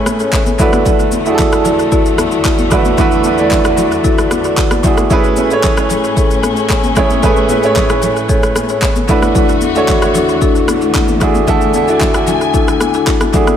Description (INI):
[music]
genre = amapiano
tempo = 113 BPM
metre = 4/4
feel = straight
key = unclear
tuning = A4 = 439 Hz
[part]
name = warm grand piano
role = accompaniment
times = 0.0-13.6 s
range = A3 to D5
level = -15 LUFS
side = right 5 dB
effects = tape echo
[part]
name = warm studio string section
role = sustained chords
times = 0.0-13.6 s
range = E2 to G#5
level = -20 LUFS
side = left 3 dB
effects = sidechain pumping
[part]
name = marimba with medium mallets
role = stabs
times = 0.0-13.6 s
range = D4 to D5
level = -16 LUFS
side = left 5 dB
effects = tape echo
[part]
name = deep house drum kit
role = drums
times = 0.1-13.6 s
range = handclaps, kick drum, rim click, shaker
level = -15 LUFS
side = equal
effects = tape echo
[part]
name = congas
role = percussion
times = 0.1-13.6 s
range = none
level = -22 LUFS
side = left 2 dB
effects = tape echo
[sound]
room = light reverb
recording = echo-heavy mix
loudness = -10 LUFS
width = side -9 dB against mid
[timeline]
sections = 0.0-13.6 A section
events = none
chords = 0.0 Amaj7; 0.6 E9sus4; 5.1 Amaj7; 9.1 E9sus4